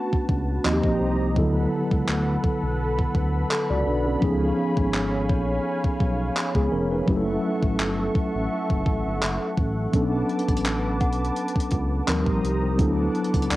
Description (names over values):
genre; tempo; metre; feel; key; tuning
contemporary R&B; 84 BPM; 4/4; swing 54% on 16ths; B minor; A4 = 438 Hz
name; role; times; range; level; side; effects
mellow tine electric piano; accompaniment; 0.0-13.6 s; D3 to D5; -25 LUFS; equal; medium stereo tremolo, cassette tape
warm analog pad; sustained chords; 0.0-13.6 s; F#4 to D#6; -30 LUFS; equal; wide subtle chorus, cassette tape
celesta; texture; 0.0-13.6 s; A4 to F#5; -35 LUFS; left 2 dB; cassette tape, tape echo
smooth gliding synth bass; bass; 0.1-13.6 s; E#1 to D#2; -27 LUFS; equal; none
gated 80s digital drum machine; drums; 0.1-13.6 s; handclaps, hi-hat, kick drum; -25 LUFS; equal; gated reverb, overdrive, cassette tape
room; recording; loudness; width
light reverb; home recording on cassette; -21 LUFS; side -17 dB against mid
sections
0.0-13.6 A section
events
break 0.0-9.9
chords
0.0 Bm7; 0.6 D#6; 1.4 D6; 4.2 C#7; 7.1 F#m7; 9.9 Bm7; 12.1 D#6; 12.8 D6